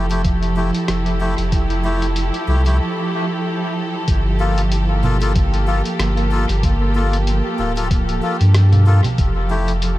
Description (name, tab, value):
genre	ambient dub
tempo	94 BPM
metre	4/4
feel	swing 56% on 16ths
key	G dorian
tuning	A4 = 439 Hz
part	warm studio string section	sustained chords	0.0-10.0 s	F3 to A4	-22 LUFS	right 2 dB	none
part	melodica	stabs	0.0-9.7 s	A3 to A4	-25 LUFS	left 3 dB	dub echo
part	warm sub bass	bass	0.0-10.0 s	D1 to G2	-17 LUFS	equal	none
part	lo-fi sampler-style drum kit	drums	0.1-10.0 s	congas, hi-hat, rim click	-27 LUFS	right 1 dB	dub echo
part	electronic kick drum	drums	0.2-9.3 s	none	-18 LUFS	equal	none
room	light reverb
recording	none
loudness	-15 LUFS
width	side -16 dB against mid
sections	0.0-4.1 A section; 4.1-10.0 B section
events	break 2.8-4.1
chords	0.0 Fmaj9; 4.1 Gm9; 9.2 Fmaj9